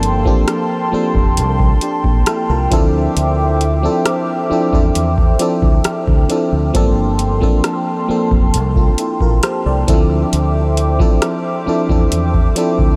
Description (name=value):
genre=contemporary R&B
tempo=67 BPM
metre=4/4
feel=straight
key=G dorian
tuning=A4 = 440 Hz
part: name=FM electric piano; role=accompaniment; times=0.0-13.0 s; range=E3 to D5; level=-20 LUFS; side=equal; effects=chorus
part: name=hollow soft pad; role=sustained chords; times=0.0-13.0 s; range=Bb3 to D6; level=-24 LUFS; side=equal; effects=chorus, sidechain pumping
part: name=deep dub fingered electric bass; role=bass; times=0.0-13.0 s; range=F1 to E2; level=-20 LUFS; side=equal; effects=none
part: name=booming analog drum machine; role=drums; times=0.0-13.0 s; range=hi-hat, kick drum, rim click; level=-19 LUFS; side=equal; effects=none
room=moderate huge ambient reverb, RT60 8.1 s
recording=dreamy mix soaked in reverb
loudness=-15 LUFS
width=mono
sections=0.0-13.0 A section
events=none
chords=0.0 Gm11; 2.7 Dm9; 6.7 Gm11; 9.9 Dm9